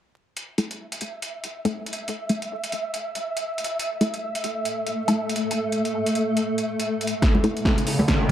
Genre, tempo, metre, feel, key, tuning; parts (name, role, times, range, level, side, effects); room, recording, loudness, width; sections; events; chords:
deep dubstep; 140 BPM; 4/4; swing 59% on 16ths, half-time; A4 = 440 Hz
deep house drum kit; drums; 0.4-8.3 s; hi-hat, snare drum; -29 LUFS; equal; overdrive
flickering grainy texture; texture; 0.9-8.3 s; A4 to E5; -30 LUFS; right 1 dB; built-in reverb
filtered dub chord stab; stabs; 0.6-7.5 s; A3 to A4; -26 LUFS; left 1 dB; phaser, dub echo
granular cloud pad; sustained chords; 4.5-8.3 s; A3 to A4; -26 LUFS; equal; built-in reverb
electronic kick drum; drums; 7.2-8.2 s; -22 LUFS; equal; overdrive
riser; sound effects; 7.6-8.3 s; -27 LUFS; right 1 dB
congas; percussion; 7.3-8.3 s; -24 LUFS; right 1 dB
moderate digital room reverb, RT60 1.2 s; vinyl crackle; -23 LUFS; side -10 dB against mid
0.4-7.2 A section; 7.2-8.3 B section
build-up 7.2-8.3; drum fill 7.2-8.3; filter sweep on synth stab 7.2-8.3; filter sweep 7.2-8.3; riser 7.6-8.3
0.4 A5